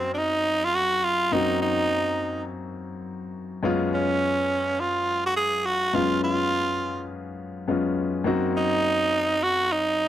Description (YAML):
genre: R&B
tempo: 104 BPM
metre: 4/4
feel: swing 63% on 16ths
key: unclear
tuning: A4 = 442 Hz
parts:
  - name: raspy tenor saxophone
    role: melody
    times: 0.0-10.1 s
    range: C#4 to G#4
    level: -23 LUFS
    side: right 2 dB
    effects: none
  - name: clear concert grand piano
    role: accompaniment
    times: 0.0-10.1 s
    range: F#2 to F#4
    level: -27 LUFS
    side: left 3 dB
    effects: none
room: little or no reverb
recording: dry, close 1970s-style studio recording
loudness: -22 LUFS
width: side -12 dB against mid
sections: 0.0-10.1 A section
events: none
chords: 0.0 D#m6/F#; 3.6 C#7/F#; 8.3 D#m6/F#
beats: 0.17 0.75 | 1.33 1.91 2.48 3.06 | 3.64 4.21 4.79 5.37 | 5.94 6.52 7.10 7.67 | 8.25 8.83 9.40 9.98